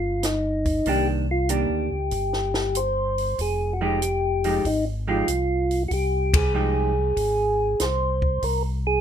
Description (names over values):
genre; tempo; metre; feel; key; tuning
soul jazz organ trio; 95 BPM; 4/4; swing 68% on 8ths; unclear; A4 = 440 Hz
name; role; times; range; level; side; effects
percussive tonewheel organ; melody; 0.0-9.0 s; Eb4 to C5; -24 LUFS; equal; slow rotary speaker
mellow tonewheel organ; bass; 0.0-9.0 s; F1 to D2; -26 LUFS; equal; chorus vibrato, slow rotary speaker
compact cocktail drum kit; drums; 0.2-8.6 s; hi-hat, kick drum, ride cymbal, snare drum; -27 LUFS; equal; none
vintage hollow-body jazz guitar; accompaniment; 0.9-6.9 s; Eb3 to G4; -26 LUFS; right 3 dB; none
room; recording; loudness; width
light reverb; minimal, uncompressed stereo recording; -21 LUFS; side -9 dB against mid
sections
0.0-9.0 A section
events
band accent 6.2-6.5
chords
0.0 Cm9; 3.4 Fm9